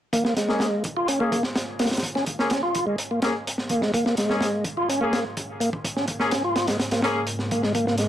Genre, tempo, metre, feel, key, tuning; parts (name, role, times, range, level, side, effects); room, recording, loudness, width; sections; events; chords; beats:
breakbeat, breaks; 126 BPM; 4/4; straight; Bb dorian; A4 = 440 Hz
dark analog pad; sustained chords; 0.5-8.1 s; Ab3 to G5; -36 LUFS; equal; chorus, phaser, sidechain pumping
tonewheel organ; riff; 0.1-8.1 s; Ab3 to F4; -25 LUFS; equal; overdrive, fast rotary speaker, low-pass filter, dub echo
crunchy breakbeat drum kit; drums; 0.1-8.1 s; hi-hat, kick drum, snare drum; -27 LUFS; equal; high-pass filter on kick, high-pass filter on hats, high-pass filter on snare, high-pass filter on room
bright horn section; stabs; 0.5-7.2 s; Bb3 to Ab4; -28 LUFS; left 2 dB; low-pass filter, dub echo
light reverb; vinyl crackle; -22 LUFS; side -11 dB against mid
0.1-8.1 A section
filter sweep on horn section 0.1-8.1; filter sweep on analog synth pad 0.1-8.1
0.1 Bbm7
| 0.13 0.61 1.08 1.56 | 2.04 2.51 2.99 3.46 | 3.94 4.42 4.89 5.37 | 5.84 6.32 6.80 7.27 | 7.75